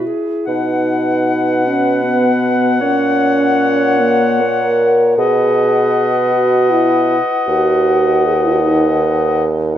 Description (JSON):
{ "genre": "classical, slow romantic movement for wind quintet", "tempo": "78 BPM", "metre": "3/4", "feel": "rubato", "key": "B major", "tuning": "A4 = 444 Hz", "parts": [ { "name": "mellow French horn", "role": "accompaniment", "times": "0.0-9.8 s", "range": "A#3 to A#4", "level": "-16 LUFS", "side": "equal", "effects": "none" }, { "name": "warm clarinet", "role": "accompaniment", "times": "0.0-9.8 s", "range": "G#4 to C#5", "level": "-21 LUFS", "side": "right 6 dB", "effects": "none" }, { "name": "warm bassoon", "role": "bass", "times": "0.0-9.8 s", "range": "D#2 to B2", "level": "-18 LUFS", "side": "right 2 dB", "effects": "none" }, { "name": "mellow concert flute", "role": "melody", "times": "0.5-9.8 s", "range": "F#5", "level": "-20 LUFS", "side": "left 10 dB", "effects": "none" }, { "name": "bright oboe", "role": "second line", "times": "0.5-9.8 s", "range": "D#5 to F#5", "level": "-21 LUFS", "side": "left 3 dB", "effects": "none" } ], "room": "moderate concert hall reverb, RT60 1.8 s", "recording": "none", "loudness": "-12 LUFS", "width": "side -10 dB against mid", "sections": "0.5-9.8 A section", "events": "none", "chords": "0.5 B; 2.8 F#/A#; 5.2 B; 7.5 B/D#" }